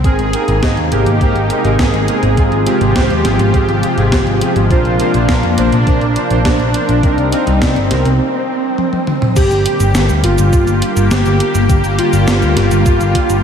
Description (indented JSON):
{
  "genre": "synthwave",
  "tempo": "103 BPM",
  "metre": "4/4",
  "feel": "straight",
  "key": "F dorian, G minor from 9.4 s",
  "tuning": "A4 = 440 Hz",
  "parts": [
    { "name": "soft supersaw", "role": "melody", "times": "0.0-13.4 s", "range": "C4 to Ab4", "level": "-18 LUFS", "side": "right 1 dB", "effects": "ping-pong delay, shimmer reverb" },
    { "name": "lush unison pad", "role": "sustained chords", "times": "0.0-13.4 s", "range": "C3 to G4", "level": "-18 LUFS", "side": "left 2 dB", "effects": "chorus, phaser, sidechain pumping, shimmer reverb" },
    { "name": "analog synth brass", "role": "stabs", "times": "0.0-8.1 s", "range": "C4 to F5", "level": "-21 LUFS", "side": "right 2 dB", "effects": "chorus, tape echo, shimmer reverb" },
    { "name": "overdriven picked electric bass", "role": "bass", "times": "0.0-13.4 s", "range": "G1 to F2", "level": "-15 LUFS", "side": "equal", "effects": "tube saturation, sidechain pumping" },
    { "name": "electronic kick drum", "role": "drums", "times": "0.0-13.3 s", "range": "none", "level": "-14 LUFS", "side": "equal", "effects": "small room ambience" },
    { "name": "gated 80s digital drum machine", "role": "drums", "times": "0.0-13.4 s", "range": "cabasa, crash cymbal, hi-hat, snare drum, toms", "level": "-21 LUFS", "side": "equal", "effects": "gated reverb, gated reverb snare, small room ambience" },
    { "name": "FM electric piano with soft pad layer", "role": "second line", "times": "9.4-13.4 s", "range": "F4 to G4", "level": "-23 LUFS", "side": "right 1 dB", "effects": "none" }
  ],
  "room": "wet cathedral reverb, RT60 7.0 s",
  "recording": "dreamy mix soaked in reverb",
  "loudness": "-11 LUFS",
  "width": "side -7 dB against mid",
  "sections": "0.0-9.4 A section; 9.4-13.4 B section",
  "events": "break 8.2-9.4; drum fill 8.8-9.4",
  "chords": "0.0 Abadd9; 2.4 Fm/Ab; 4.7 Bbadd9; 7.0 Cm7; 8.2 N.C.; 9.4 Gm"
}